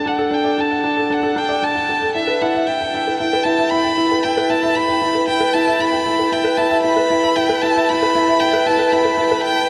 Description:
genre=piano and strings electronica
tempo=115 BPM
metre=4/4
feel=straight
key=unclear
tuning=A4 = 440 Hz
part: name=rich violin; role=melody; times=0.0-9.7 s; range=E5 to B5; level=-20 LUFS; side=equal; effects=low-pass filter
part: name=felt-muted upright piano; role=riff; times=0.0-9.7 s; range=D4 to G5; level=-20 LUFS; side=equal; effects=none
room=wet huge ambient reverb, RT60 7.7 s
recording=none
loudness=-17 LUFS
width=mono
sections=0.0-9.7 A section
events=build-up 0.0-9.7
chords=0.0 D; 2.1 Em

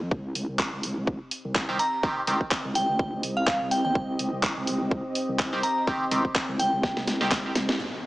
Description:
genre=bass house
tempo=125 BPM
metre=4/4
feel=swing 56% on 16ths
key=unclear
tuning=A4 = 440 Hz
part: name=vowel-sweep wobble bass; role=bass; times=0.0-7.8 s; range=C2 to Eb2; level=-31 LUFS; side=equal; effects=chorus, sidechain pumping
part: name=deep dark ambient pad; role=sustained chords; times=1.3-8.1 s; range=F3 to Eb5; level=-33 LUFS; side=right 1 dB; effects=chorus, built-in reverb, sidechain pumping
part: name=electronic kick drum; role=drums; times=0.1-7.4 s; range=none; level=-28 LUFS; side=equal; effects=none
part: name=house drum kit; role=drums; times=0.4-7.8 s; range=handclaps, hi-hat, snare drum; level=-28 LUFS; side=equal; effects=none
part: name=band-passed chord stab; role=stabs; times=1.7-2.4, 5.5-7.4 s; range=Eb3 to G4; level=-29 LUFS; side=equal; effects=phaser, sidechain pumping, digital delay
part: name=glassy synth bell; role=melody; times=1.8-6.8 s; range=F5 to Bb5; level=-27 LUFS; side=equal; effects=chorus, digital delay
part: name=impact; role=sound effects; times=7.8-8.1 s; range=none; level=-36 LUFS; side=equal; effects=none
room=light reverb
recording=small speaker sound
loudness=-24 LUFS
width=side -18 dB against mid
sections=0.0-7.8 A section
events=drum fill 6.8-7.8; band accent 7.7; impact 7.8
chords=0.1 Cm

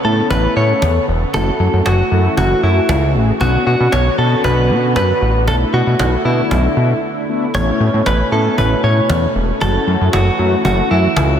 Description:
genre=dance-pop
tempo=116 BPM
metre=4/4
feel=straight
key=A major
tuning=A4 = 440 Hz
part: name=direct-recorded clean electric guitar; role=melody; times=0.0-11.4 s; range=E4 to C#5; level=-18 LUFS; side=equal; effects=ping-pong delay
part: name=mellow synth brass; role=accompaniment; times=0.0-11.1 s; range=A3 to A4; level=-22 LUFS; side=left 2 dB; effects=chorus
part: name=soft supersaw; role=sustained chords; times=0.0-11.4 s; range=B2 to A4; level=-21 LUFS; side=equal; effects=ensemble chorus
part: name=fat analog bass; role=bass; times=0.0-11.4 s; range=E1 to B2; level=-15 LUFS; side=equal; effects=none
part: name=cajon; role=drums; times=0.3-11.3 s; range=none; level=-24 LUFS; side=equal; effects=none
room=moderate cathedral reverb, RT60 6.0 s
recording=dreamy mix soaked in reverb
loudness=-12 LUFS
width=side -9 dB against mid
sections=0.0-11.4 A section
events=break 7.0-7.5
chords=0.0 Aadd9; 1.3 F#m7; 3.4 Bmadd9; 5.5 E7sus4/B; 7.5 Aadd9; 9.6 F#m7

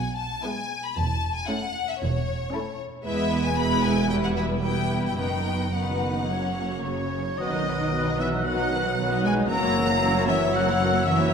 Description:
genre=quick classical-period movement for symphony orchestra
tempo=114 BPM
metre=4/4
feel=rubato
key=B major from 3.1 s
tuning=A4 = 438 Hz
part: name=clear studio violin section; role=melody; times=0.0-11.3 s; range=C#5 to B5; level=-29 LUFS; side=left 5 dB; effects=none
part: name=warm chamber cello section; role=bass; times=0.0-11.3 s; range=E2 to A#3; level=-31 LUFS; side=right 3 dB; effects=none
part: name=warm chamber double bass section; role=bass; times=0.0-11.3 s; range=E1 to B1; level=-30 LUFS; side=right 3 dB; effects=none
part: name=rich symphonic violin section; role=second line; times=0.4-11.3 s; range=C#4 to D#5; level=-32 LUFS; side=left 2 dB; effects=none
part: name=warm chamber viola section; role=accompaniment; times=0.4-11.3 s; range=D#3 to D#4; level=-29 LUFS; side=right 2 dB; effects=none
part: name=clear oboe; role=second line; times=6.8-11.3 s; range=C#5 to A#5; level=-31 LUFS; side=equal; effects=none
part: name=mellow French horn section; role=sustained chords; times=6.8-11.3 s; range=C#3 to A#3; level=-31 LUFS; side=left 3 dB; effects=none
part: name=dark clarinet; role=second line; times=7.4-11.3 s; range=B4 to C#5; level=-31 LUFS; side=left 4 dB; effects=none
part: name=flute section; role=second line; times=7.4-11.3 s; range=E6 to F#6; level=-32 LUFS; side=left 1 dB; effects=none
part: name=dark bassoon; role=accompaniment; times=7.4-11.3 s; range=F#3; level=-32 LUFS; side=left 2 dB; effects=none
room=wet concert hall reverb, RT60 2.3 s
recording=minimal, uncompressed stereo recording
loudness=-22 LUFS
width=side -6 dB against mid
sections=0.0-7.4 A section; 7.4-11.3 B section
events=none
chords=0.0 E; 1.0 A/E; 3.1 E; 4.1 Em; 5.2 B/F#; 6.3 F#; 7.4 B; 9.5 F#7

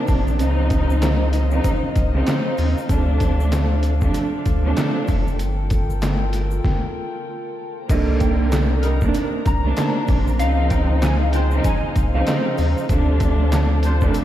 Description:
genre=hip hop, boom-bap hip-hop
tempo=96 BPM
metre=4/4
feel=swing 60% on 16ths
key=C dorian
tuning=A4 = 439 Hz
part: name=warm studio string section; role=accompaniment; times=0.0-14.2 s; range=C3 to Eb4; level=-23 LUFS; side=right 2 dB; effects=cassette tape, high-pass filter, low-pass filter
part: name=warm studio string section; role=sustained chords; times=0.0-14.2 s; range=Eb3 to Bb5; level=-30 LUFS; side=left 2 dB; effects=high-pass filter, low-pass filter
part: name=warm sub bass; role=bass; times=0.1-14.1 s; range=F1 to Eb2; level=-19 LUFS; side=equal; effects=none
part: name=trip hop sampler-style drum kit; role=drums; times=0.1-14.2 s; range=crash cymbal, handclaps, hi-hat, kick drum, snare drum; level=-22 LUFS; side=equal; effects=overdrive
part: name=egg shaker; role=percussion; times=0.1-14.2 s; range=none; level=-46 LUFS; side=left 8 dB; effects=none
part: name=clean electric guitar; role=melody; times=7.9-12.4 s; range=Eb5 to Bb5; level=-29 LUFS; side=left 1 dB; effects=ensemble chorus, high-pass filter, low-pass filter, diffuse ambient delay
part: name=warm horn section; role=stabs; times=8.8-14.2 s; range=G3 to C5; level=-32 LUFS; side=left 1 dB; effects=high-pass filter, low-pass filter, diffuse ambient delay
room=moderate lush hall reverb, RT60 2.8 s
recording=dreamy mix soaked in reverb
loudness=-17 LUFS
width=side -12 dB against mid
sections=0.0-7.9 A section; 7.9-14.2 B section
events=break 5.4-7.9; stop 6.6-7.9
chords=0.4 Dbmaj9; 2.9 Dm7; 5.4 Gm9; 7.9 Cm9; 10.4 Dbmaj9; 12.9 Dm7

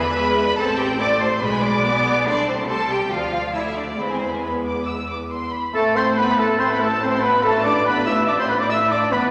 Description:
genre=quick classical-period movement for symphony orchestra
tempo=141 BPM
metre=4/4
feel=straight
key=A minor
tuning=A4 = 439 Hz
part: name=rich studio violin section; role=melody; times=0.0-9.2 s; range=A4 to E6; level=-28 LUFS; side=equal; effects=none
part: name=rich studio violin section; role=second line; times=0.0-9.3 s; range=E4 to D6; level=-29 LUFS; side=equal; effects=none
part: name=rich studio viola section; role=accompaniment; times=0.0-9.3 s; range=E3 to D4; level=-29 LUFS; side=equal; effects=none
part: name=rich studio cello section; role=bass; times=0.0-9.3 s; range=G#2 to D5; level=-28 LUFS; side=equal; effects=none
part: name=rich studio double bass section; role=bass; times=0.0-9.3 s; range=G#1 to E2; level=-32 LUFS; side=equal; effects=none
part: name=mellow clarinet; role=second line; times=5.7-9.3 s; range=A4 to E5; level=-31 LUFS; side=equal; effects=none
part: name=small flute group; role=second line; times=5.7-9.3 s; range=A4 to E5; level=-30 LUFS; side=equal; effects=none
part: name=mellow French horn section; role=sustained chords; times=5.7-9.3 s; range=A3 to E4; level=-26 LUFS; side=equal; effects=none
part: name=clear trumpet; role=stabs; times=5.7-9.3 s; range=A4 to E5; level=-24 LUFS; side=equal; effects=none
part: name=warm oboe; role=second line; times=5.8-9.3 s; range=A4 to E5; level=-30 LUFS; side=equal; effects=none
room=wet concert hall reverb, RT60 2.2 s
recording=none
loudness=-20 LUFS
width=mono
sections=0.0-5.7 A section; 5.7-9.3 B section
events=none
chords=0.0 E7; 0.6 Am; 1.4 G#dim/B; 2.3 Am/C; 3.1 Dmadd9; 4.0 E; 5.7 Am; 7.4 Bm7b5/A

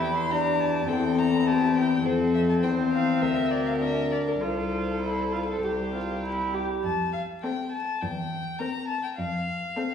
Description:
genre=quick classical-period movement for string quartet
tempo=103 BPM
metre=4/4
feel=straight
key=F major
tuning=A4 = 435 Hz
part: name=rich violin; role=melody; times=0.0-9.9 s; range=Bb4 to C6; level=-31 LUFS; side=left 3 dB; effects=none
part: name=rich violin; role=second line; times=0.0-9.9 s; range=G4 to C5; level=-32 LUFS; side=left 1 dB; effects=none
part: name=rich viola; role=accompaniment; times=0.0-9.9 s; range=C4 to A4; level=-26 LUFS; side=left 3 dB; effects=none
part: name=rich cello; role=bass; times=0.0-9.6 s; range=C2 to F2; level=-31 LUFS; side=equal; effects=none
room=wet recital hall reverb, RT60 1.3 s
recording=heard from further back in the room, vinyl crackle, studio ambience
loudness=-24 LUFS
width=side -8 dB against mid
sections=0.0-6.8 A section; 6.8-9.9 B section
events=none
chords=0.0 Em7b5; 0.9 C/E; 2.0 F; 3.2 Bb/D; 4.4 F/C; 5.6 C; 6.8 F; 8.0 C7/E; 9.2 F

